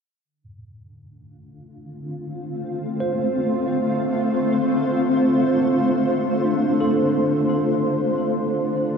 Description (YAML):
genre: ambient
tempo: free time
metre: none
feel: none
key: F major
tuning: A4 = 440 Hz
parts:
  - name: shimmering ambient pad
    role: sustained chords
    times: 1.9-9.0 s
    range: D3 to C5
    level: -20 LUFS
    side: equal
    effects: chorus, built-in reverb
  - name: tine electric piano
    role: arpeggios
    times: 3.0-9.0 s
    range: C4 to C5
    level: -25 LUFS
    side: equal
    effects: medium stereo tremolo, ping-pong delay
room: wet plate reverb, RT60 3.1 s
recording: dreamy mix soaked in reverb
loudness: -18 LUFS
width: side -6 dB against mid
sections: 0.3-9.0 A section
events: filter sweep on ambient pad 0.3-9.0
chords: 0.3 F6